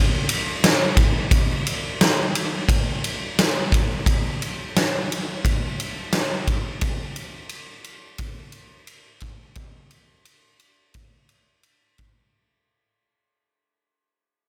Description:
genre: rock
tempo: 87 BPM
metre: 4/4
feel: straight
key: none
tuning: none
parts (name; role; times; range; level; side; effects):
- huge arena drum kit; drums; 0.3-12.2 s; kick drum, ride cymbal, snare drum; -23 LUFS; equal; none
room: light reverb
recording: none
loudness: -22 LUFS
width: mono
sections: 0.0-12.3 A section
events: fade-out 0.0-12.3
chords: none

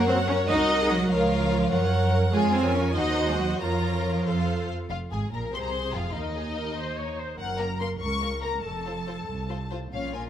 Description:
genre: quick classical-period movement for string orchestra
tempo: 96 BPM (dotted quarters)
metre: 6/8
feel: straight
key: Bb minor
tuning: A4 = 440 Hz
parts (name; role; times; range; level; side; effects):
- warm studio violin section; melody; 0.0-10.2 s; F4 to Db6; -33 LUFS; left 6 dB; none
- rich studio violin section; second line; 0.0-10.3 s; Bb3 to Bb5; -31 LUFS; left 2 dB; none
- warm studio viola section; accompaniment; 0.0-10.3 s; F4 to Db5; -31 LUFS; equal; none
- rich studio double bass section; bass; 0.0-10.3 s; F1 to Gb2; -29 LUFS; right 2 dB; none
- warm studio cello section; bass; 0.0-10.3 s; C2 to Eb4; -28 LUFS; right 2 dB; none
room: light reverb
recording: close, detailed microphones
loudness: -24 LUFS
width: side -10 dB against mid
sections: 0.0-4.9 A section; 4.9-10.3 B section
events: none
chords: 0.5 Cm7b5; 1.1 Bbm/Db; 1.7 Gb; 2.3 Db/F; 3.0 Cdim/Eb; 3.6 Bbm/F; 4.3 F; 4.9 Bb5/F; 5.5 Fm/C; 6.2 Eb5; 7.4 Gb; 8.6 F

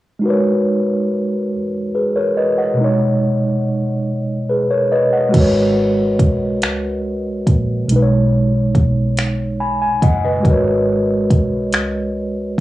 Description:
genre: slow six-eight R&B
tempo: 47 BPM (dotted quarters)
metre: 6/8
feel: straight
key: G# minor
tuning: A4 = 440 Hz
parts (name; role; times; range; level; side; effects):
- mellow tine electric piano; accompaniment; 0.2-12.6 s; B2 to B5; -16 LUFS; equal; medium stereo tremolo, cassette tape, plate reverb
- vintage muted fingered electric bass; bass; 5.3-12.6 s; F#1 to C#2; -20 LUFS; right 1 dB; none
- smooth R&B drum kit; drums; 5.3-12.6 s; crash cymbal, finger snaps, hi-hat, kick drum; -16 LUFS; equal; cassette tape
room: light reverb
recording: home recording on cassette, small room ambience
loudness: -14 LUFS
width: side -16 dB against mid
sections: 0.2-5.3 A section; 5.3-12.6 B section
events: tine electric piano fill 9.2-10.4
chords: 0.2 G#m11; 7.9 B69; 10.4 G#m11

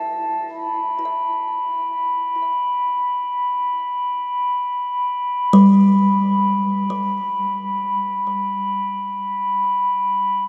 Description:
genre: ambient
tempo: free time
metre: none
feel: none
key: unclear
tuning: A4 = 441 Hz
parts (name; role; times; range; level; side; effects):
- kalimba; arpeggios; 0.0-9.8 s; G3 to E5; -20 LUFS; equal; delay
- glass harmonica; texture; 0.0-10.5 s; A5 to B5; -22 LUFS; equal; none
room: wet huge ambient reverb, RT60 7.6 s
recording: none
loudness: -20 LUFS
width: mono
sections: 0.5-10.5 A section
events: none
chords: 0.5 G6

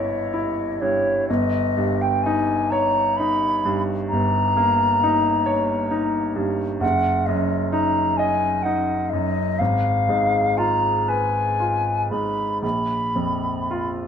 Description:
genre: classical, romantic duo for flute and grand piano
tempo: 36-45 BPM (dotted quarters)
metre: 12/8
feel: rubato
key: Eb minor from 6.8 s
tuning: A4 = 440 Hz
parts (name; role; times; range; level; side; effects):
- mellow hollow silver concert flute; melody; 0.0-13.9 s; C#5 to B5; -22 LUFS; left 1 dB; none
- bright grand piano; accompaniment; 0.0-14.1 s; Gb1 to Eb5; -22 LUFS; equal; none
room: light reverb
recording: close, detailed microphones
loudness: -19 LUFS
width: side -8 dB against mid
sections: 0.0-14.1 A section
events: none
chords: 0.0 D#7b9/G; 1.3 D#7/G; 6.8 Ebm/Gb; 9.6 Fdim/Ab; 12.6 Bb5

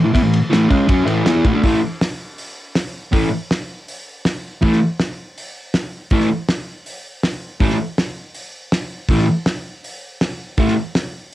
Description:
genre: garage rock duo or trio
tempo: 161 BPM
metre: 4/4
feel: straight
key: A major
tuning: A4 = 440 Hz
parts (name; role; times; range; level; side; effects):
- fuzz guitar; riff; 0.0-10.7 s; A2 to F#4; -15 LUFS; equal; distortion, cassette tape
- cloth-damped thuddy drum kit; drums; 0.1-11.0 s; hi-hat, kick drum, ride cymbal, snare drum; -20 LUFS; equal; cassette tape
room: light reverb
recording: home recording on cassette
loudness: -16 LUFS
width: side -15 dB against mid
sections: 0.0-1.6 A section; 1.6-11.3 B section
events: none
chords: 0.0 A; 1.6 A5

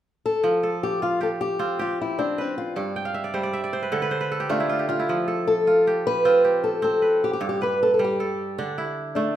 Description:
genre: west african traditional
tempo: 103 BPM (dotted quarters)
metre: 12/8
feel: straight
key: F lydian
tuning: A4 = 440 Hz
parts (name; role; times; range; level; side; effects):
- fingerpicked old ladder-braced acoustic guitar; melody; 0.3-9.4 s; C4 to B4; -22 LUFS; left 1 dB; none
- kora; arpeggios; 0.4-9.4 s; G2 to G5; -26 LUFS; right 3 dB; none
room: moderate recital hall reverb, RT60 1.4 s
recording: minimal, uncompressed stereo recording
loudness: -21 LUFS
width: side -11 dB against mid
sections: 0.4-9.4 A section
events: kora fill 3.0-5.1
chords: 0.4 F; 2.8 G; 3.9 D5; 5.1 F; 7.4 G; 8.6 D5

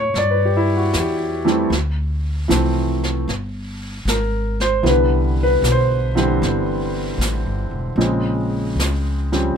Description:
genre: jazz ballad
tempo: 76 BPM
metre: 4/4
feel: swing 68% on 8ths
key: G major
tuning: A4 = 440 Hz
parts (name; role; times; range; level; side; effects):
- warm upright piano; accompaniment; 0.0-9.6 s; Db3 to D5; -19 LUFS; equal; none
- upright bass; bass; 0.0-9.5 s; E1 to A2; -21 LUFS; equal; none
- jazz brush drum kit; drums; 0.2-9.6 s; brushed snare drum, hi-hat, snare drum; -27 LUFS; right 1 dB; none
room: little or no reverb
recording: none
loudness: -17 LUFS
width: side -7 dB against mid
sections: 0.0-9.6 A section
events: none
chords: 0.0 Gsus2; 1.7 Dm7; 3.3 Gmadd11; 4.8 Cmaj7; 8.0 Bbm7

